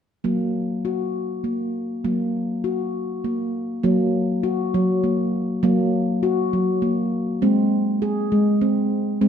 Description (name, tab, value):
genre	world meditative, meditative tuned percussion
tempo	67 BPM (dotted quarters)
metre	6/8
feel	straight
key	Gb lydian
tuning	A4 = 440 Hz
part	handpan	solo	0.2-9.3 s	Gb3 to Ab4	-20 LUFS	equal	none
room	wet echo chamber reverb, RT60 1.9 s, studio ambience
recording	dark, warm production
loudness	-20 LUFS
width	side -8 dB against mid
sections	0.2-3.8 A section; 3.8-9.3 B section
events	none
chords	0.2 Gb; 7.4 Ab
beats	| 0.25 1.15 | 2.04 2.94 | 3.84 4.74 | 5.64 6.53 | 7.43 8.32 | 9.22